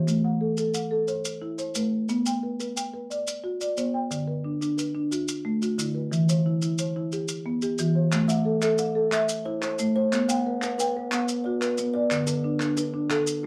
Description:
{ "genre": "southern african traditional, mbira-style interlocking cycle", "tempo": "120 BPM (dotted quarters)", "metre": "12/8", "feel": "straight", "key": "A equiheptatonic", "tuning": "A4 = 440 Hz", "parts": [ { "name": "marimba with soft mallets", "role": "arpeggios", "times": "0.0-13.5 s", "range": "D3 to G5+29c", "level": "-27 LUFS", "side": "equal", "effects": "none" }, { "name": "maracas", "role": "percussion", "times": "0.1-13.4 s", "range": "none", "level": "-36 LUFS", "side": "equal", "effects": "none" }, { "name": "group handclap", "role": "percussion", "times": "8.1-13.3 s", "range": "none", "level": "-34 LUFS", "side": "equal", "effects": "none" }, { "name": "kalimba", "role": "arpeggios", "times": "8.3-13.5 s", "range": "D3 to F#5-43c", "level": "-32 LUFS", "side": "equal", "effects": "none" } ], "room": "wet small room reverb, RT60 0.5 s", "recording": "none", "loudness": "-26 LUFS", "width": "mono", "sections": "0.0-8.1 A section; 8.1-13.5 B section", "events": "none", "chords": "0.1 Am; 2.1 Bm; 4.1 D; 6.1 Em; 8.1 Am; 10.1 Bm; 12.1 D5", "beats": "| 0.08 0.58 1.09 1.59 | 2.10 2.60 3.10 3.61 | 4.11 4.61 5.11 5.62 | 6.12 6.62 7.12 7.62 | 8.12 8.62 9.12 9.62 | 10.12 10.61 11.11 11.61 | 12.10 12.60 13.10" }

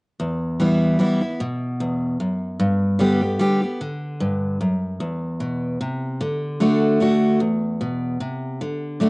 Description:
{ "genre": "bluegrass", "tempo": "150 BPM", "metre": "3/4", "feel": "swing 54% on 8ths", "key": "E minor", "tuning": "A4 = 440 Hz", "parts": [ { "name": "picked steel-string acoustic guitar", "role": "solo", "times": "0.2-9.1 s", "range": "E2 to G4", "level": "-19 LUFS", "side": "equal", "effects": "cassette tape" } ], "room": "moderate spring reverb, RT60 1.1 s", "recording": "home recording on cassette, nothing above 10.3 kHz", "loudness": "-19 LUFS", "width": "side -29 dB against mid", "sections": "0.2-9.1 A section", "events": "none", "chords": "0.2 Em; 2.6 G; 5.0 E5; 6.2 D; 7.4 E5", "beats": "| 0.20 0.60 1.00 | 1.40 1.80 2.20 | 2.60 3.00 3.40 | 3.80 4.20 4.60 | 5.00 5.41 5.81 | 6.21 6.61 7.01 | 7.41 7.81 8.21 | 8.61 9.01" }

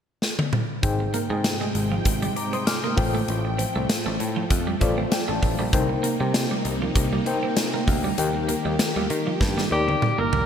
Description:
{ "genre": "1980s-style pop", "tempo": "98 BPM", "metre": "4/4", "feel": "swing 55% on 16ths", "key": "unclear", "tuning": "A4 = 439 Hz", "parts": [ { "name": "big rock drum kit", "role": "drums", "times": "0.2-10.5 s", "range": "hi-hat, kick drum, snare drum, toms", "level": "-25 LUFS", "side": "equal", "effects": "gated reverb" }, { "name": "FM electric piano with tremolo", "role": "accompaniment", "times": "0.8-10.5 s", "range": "Ab2 to F6", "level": "-28 LUFS", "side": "left 4 dB", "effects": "none" }, { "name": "string machine, violas", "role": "sustained chords", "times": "0.8-10.5 s", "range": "C3 to G5", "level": "-30 LUFS", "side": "equal", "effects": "ensemble chorus" }, { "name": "picked electric bass", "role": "bass", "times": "0.8-10.5 s", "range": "F1 to Eb3", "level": "-28 LUFS", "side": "equal", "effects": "none" }, { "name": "twelve-string electric guitar", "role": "riff", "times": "1.0-10.4 s", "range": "F3 to C4", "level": "-30 LUFS", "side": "right 5 dB", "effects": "lush chorus, ping-pong delay" }, { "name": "bright alto saxophone", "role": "melody", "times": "9.7-10.5 s", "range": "G4 to Bb4", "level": "-23 LUFS", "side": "equal", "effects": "none" } ], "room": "moderate lush hall reverb, RT60 2.7 s", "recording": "bright 1980s-style digital production", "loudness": "-21 LUFS", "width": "side -8 dB against mid", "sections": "0.8-10.5 A section", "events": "drum fill 0.2-0.8, 9.4-10.5; FM electric piano fill 4.5-5.7", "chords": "0.0 N.C.; 0.8 Abmaj7; 3.0 Fadd9/A; 5.7 Cm7; 8.2 Eb", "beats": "0.22 | 0.83 1.45 2.06 2.67 | 3.28 3.90 4.51 5.12 | 5.73 6.34 6.96 7.57 | 8.18 8.79 9.41 10.02" }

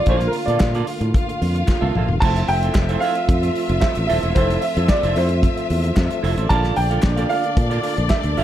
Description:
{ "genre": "disco", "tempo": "112 BPM", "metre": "4/4", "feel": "straight", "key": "F major", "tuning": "A4 = 442 Hz", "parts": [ { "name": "warm baby grand piano", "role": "melody", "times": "0.0-8.4 s", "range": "Bb4 to A5", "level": "-23 LUFS", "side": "right 2 dB", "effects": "none" }, { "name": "clear studio string section", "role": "second line", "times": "0.0-8.4 s", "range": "D4 to F5", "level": "-26 LUFS", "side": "left 1 dB", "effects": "none" }, { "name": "mellow tonewheel organ", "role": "sustained chords", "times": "0.0-8.4 s", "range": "D3 to A4", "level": "-29 LUFS", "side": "left 1 dB", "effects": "chorus vibrato, fast rotary speaker" }, { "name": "semi-hollow electric guitar", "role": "accompaniment", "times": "0.1-8.4 s", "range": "Bb3 to F5", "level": "-28 LUFS", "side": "right 8 dB", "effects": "none" }, { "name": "fingered electric bass", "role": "bass", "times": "0.1-8.4 s", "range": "Eb1 to Bb2", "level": "-20 LUFS", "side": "equal", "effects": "none" }, { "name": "warm soul drum kit", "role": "drums", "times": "0.1-8.4 s", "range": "crash cymbal, hi-hat, kick drum, snare drum, toms", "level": "-21 LUFS", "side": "equal", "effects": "none" }, { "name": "group handclap", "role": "percussion", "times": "0.6-8.2 s", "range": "none", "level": "-36 LUFS", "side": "left 2 dB", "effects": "none" } ], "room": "little or no reverb", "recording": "none", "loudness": "-16 LUFS", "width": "side -12 dB against mid", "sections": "0.0-2.2 A section; 2.2-8.4 B section", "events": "grand piano solo 0.0-2.2; drum fill 1.7-2.2", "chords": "0.0 Bbmaj7; 2.2 Fmaj7; 6.5 Bbmaj7", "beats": "| 0.07 0.61 1.14 1.68 | 2.22 2.75 3.29 3.82 | 4.36 4.89 5.43 5.97 | 6.50 7.04 7.57 8.11" }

